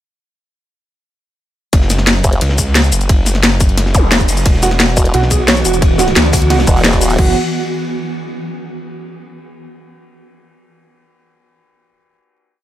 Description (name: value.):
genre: dark technical drum and bass.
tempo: 176 BPM.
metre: 4/4.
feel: straight.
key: unclear.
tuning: A4 = 440 Hz.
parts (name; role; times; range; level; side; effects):
snarling distorted saw bass; bass; 1.7-7.3 s; E1 to D2; -15 LUFS; equal; distortion, overdrive.
cloth-damped thuddy drum kit; drums; 1.7-7.1 s; hi-hat, ride cymbal, snare drum; -26 LUFS; left 1 dB; high-pass filter on cymbals, studio ambience, high-pass filter on hats, high-pass filter on snare, high-pass filter on room.
drum and bass drum kit; drums; 1.7-7.3 s; crash cymbal, hi-hat, shaker, snare drum; -14 LUFS; left 1 dB; overdrive, studio ambience.
electronic kick drum; drums; 1.7-7.3 s; none; -13 LUFS; equal; overdrive, studio ambience.
formant-sweep wobble bass; bass; 2.2-2.4, 5.0-7.2 s; E1 to F#1; -14 LUFS; equal; chorus.
zap; sound effects; 3.9-4.0 s; none; -21 LUFS; left 1 dB; none.
swarming drone; sustained chords; 5.1-7.3 s; E3 to F#4; -20 LUFS; right 2 dB; built-in reverb, sidechain pumping.
felt-muted upright piano; arpeggios; 4.6-7.3 s; F#4 to F#5; -19 LUFS; right 4 dB; sidechain pumping, dub echo.
room: studio reverb.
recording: none.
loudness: -10 LUFS.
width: side -13 dB against mid.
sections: 1.7-7.2 drop; 7.2-8.5 final chord.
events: drop 1.7-7.2.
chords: 1.7 F#5; 4.5 E5; 7.2 F#5.